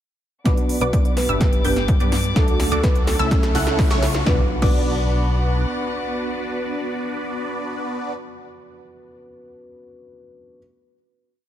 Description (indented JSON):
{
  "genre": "EDM, festival progressive house",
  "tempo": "126 BPM",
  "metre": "4/4",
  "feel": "straight",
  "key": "B minor",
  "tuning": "A4 = 440 Hz",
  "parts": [
    { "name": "dark grand piano", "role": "accompaniment", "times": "0.4-10.6 s", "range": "G2 to B4", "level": "-29 LUFS", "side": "right 2 dB", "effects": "sidechain pumping, ping-pong delay" },
    { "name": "warm studio string section", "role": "sustained chords", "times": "0.5-7.8 s", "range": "B3 to D6", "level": "-33 LUFS", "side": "left 4 dB", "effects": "sidechain pumping, low-pass filter" },
    { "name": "wide unison pluck", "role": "arpeggios", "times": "0.5-8.1 s", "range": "C#6 to G6", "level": "-30 LUFS", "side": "equal", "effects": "wide subtle chorus, sidechain pumping, ping-pong delay" },
    { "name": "supersaw stab", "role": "riff", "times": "0.5-8.1 s", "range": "A3 to G5", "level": "-26 LUFS", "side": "equal", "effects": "phaser, sidechain pumping, low-pass filter, ping-pong delay" },
    { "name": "fat analog bass", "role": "bass", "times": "0.5-5.7 s", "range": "G1 to G2", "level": "-24 LUFS", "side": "equal", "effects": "sidechain pumping" },
    { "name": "big-room dance drum kit", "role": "drums", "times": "0.5-4.8 s", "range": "crash cymbal, hi-hat, snare drum", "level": "-29 LUFS", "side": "equal", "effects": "overdrive, high-pass filter on snare, high-pass filter on hats, high-pass filter on cymbals, high-pass filter on room" },
    { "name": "electronic kick drum", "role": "drums", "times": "0.5-4.8 s", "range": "none", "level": "-19 LUFS", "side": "equal", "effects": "overdrive" },
    { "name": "riser and impact", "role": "sound effects", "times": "2.3-7.8 s", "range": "none", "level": "-31 LUFS", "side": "left 1 dB", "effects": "none" },
    { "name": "bell-like FM electric piano", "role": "melody", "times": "0.8-3.3 s", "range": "A4 to D5", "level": "-29 LUFS", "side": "equal", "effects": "chorus, ping-pong delay" }
  ],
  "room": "light reverb",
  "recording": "none",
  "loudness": "-18 LUFS",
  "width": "side -11 dB against mid",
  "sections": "0.5-4.3 build; 4.3-8.1 final chord",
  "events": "build-up 0.5-4.3; drum fill 0.5-4.3; filter sweep on supersaw synth 0.5-4.3",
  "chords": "0.5 Bm; 1.4 G; 2.4 D; 3.3 A/C#; 4.3 Bm",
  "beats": "| 0.46 0.93 1.41 1.89 | 2.36 2.84 3.31 3.79 | 4.27 4.74 5.22 5.69 | 6.17 6.65 7.12 7.60"
}